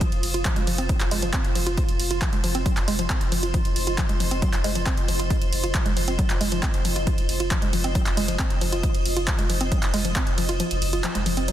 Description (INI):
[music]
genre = driving peak-time techno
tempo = 136 BPM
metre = 4/4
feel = straight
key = unclear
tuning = A4 = 440 Hz
[part]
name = woody wave-folded pluck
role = riff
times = 0.0-11.5 s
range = F3 to F4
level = -29 LUFS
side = equal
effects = chorus, tube saturation, sidechain pumping, ping-pong delay
[part]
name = electronic kick drum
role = drums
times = 0.0-10.2 s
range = none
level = -25 LUFS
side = equal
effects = none
[part]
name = punchy analog drum machine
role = drums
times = 0.0-11.5 s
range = handclaps, hi-hat, ride cymbal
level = -28 LUFS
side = right 1 dB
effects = overdrive
[part]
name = granular cloud pad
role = texture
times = 0.0-11.5 s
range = F4 to Eb6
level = -30 LUFS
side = equal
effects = built-in reverb, sidechain pumping
[part]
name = saturated sub bass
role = bass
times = 0.1-11.5 s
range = F1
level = -28 LUFS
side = equal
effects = overdrive, sidechain pumping, low-pass filter
[sound]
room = light reverb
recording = dense, heavily limited modern master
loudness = -21 LUFS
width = side -12 dB against mid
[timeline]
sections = 0.0-11.5 A section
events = kick drops out 10.6-11.5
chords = 0.0 F5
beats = | 0.01 0.45 0.89 1.33 | 1.78 2.22 2.66 3.10 | 3.54 3.98 4.42 4.86 | 5.30 5.75 6.19 6.63 | 7.07 7.51 7.95 8.39 | 8.83 9.28 9.72 10.16 | 10.60 11.04 11.48